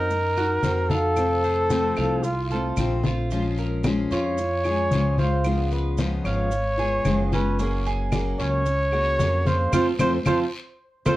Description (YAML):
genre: latin, Cuban son and guajira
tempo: 112 BPM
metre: 4/4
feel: straight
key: unclear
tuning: A4 = 439 Hz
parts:
  - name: trumpet with bucket mute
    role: melody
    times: 0.0-11.2 s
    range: F4 to Db5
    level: -24 LUFS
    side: equal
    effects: slapback echo, plate reverb
  - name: picked steel-string acoustic guitar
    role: accompaniment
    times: 0.0-11.2 s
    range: C3 to Ab4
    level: -27 LUFS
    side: left 3 dB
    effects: none
  - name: Cuban tres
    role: arpeggios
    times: 0.0-11.2 s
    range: Db4 to F5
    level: -30 LUFS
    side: right 4 dB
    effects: none
  - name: upright bass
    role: bass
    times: 0.0-11.2 s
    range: Gb1 to Gb2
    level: -26 LUFS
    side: equal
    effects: none
  - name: congas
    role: percussion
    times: 0.1-11.2 s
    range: none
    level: -27 LUFS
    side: left 2 dB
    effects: none
  - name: guiro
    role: percussion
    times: 0.1-11.2 s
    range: none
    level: -42 LUFS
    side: left 3 dB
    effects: none
  - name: maracas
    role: percussion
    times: 0.1-11.2 s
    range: none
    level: -45 LUFS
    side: right 6 dB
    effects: none
  - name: claves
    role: percussion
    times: 0.4-11.2 s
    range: none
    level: -37 LUFS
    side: right 1 dB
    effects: none
room: moderate studio ambience, RT60 0.5 s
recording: worn, warbling old tape, cassette tape, warbly pitch drift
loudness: -21 LUFS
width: side -16 dB against mid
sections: 0.0-11.2 A section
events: band accent 9.7-11.2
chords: 0.0 Cdim; 1.2 F; 3.3 Bbm7; 5.5 Db7; 7.6 Gbadd9; 9.7 F